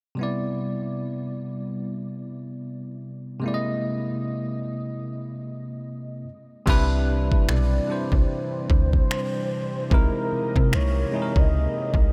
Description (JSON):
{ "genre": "contemporary R&B", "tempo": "74 BPM", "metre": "4/4", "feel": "swing 58% on 16ths", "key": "unclear", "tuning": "A4 = 440 Hz", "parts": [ { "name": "bell-like tine electric piano", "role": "accompaniment", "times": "0.1-12.1 s", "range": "C3 to D#5", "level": "-30 LUFS", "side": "equal", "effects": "none" }, { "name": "chorused pulse-width pad", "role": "sustained chords", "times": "6.7-12.1 s", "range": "E3 to D#5", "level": "-39 LUFS", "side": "equal", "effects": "none" }, { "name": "slap-like FM bass", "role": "bass", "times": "6.7-12.1 s", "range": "B1 to C3", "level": "-25 LUFS", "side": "equal", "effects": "none" }, { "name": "smooth R&B drum kit", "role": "drums", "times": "6.7-12.1 s", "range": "crash cymbal, finger snaps, kick drum", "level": "-24 LUFS", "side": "equal", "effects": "none" }, { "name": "gliding portamento lead", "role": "melody", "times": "7.5-12.1 s", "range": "Bb4 to D#5", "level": "-32 LUFS", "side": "equal", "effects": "chorus, analog delay" } ], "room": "light reverb, digital ambience", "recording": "none", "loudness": "-25 LUFS", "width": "mono", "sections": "0.2-6.7 A section; 6.7-12.1 B section", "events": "hi-hats muted 6.7-12.1", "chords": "0.2 Cmaj7; 3.4 C7alt; 6.3 N.C.; 6.7 Cmaj7; 9.9 C7alt" }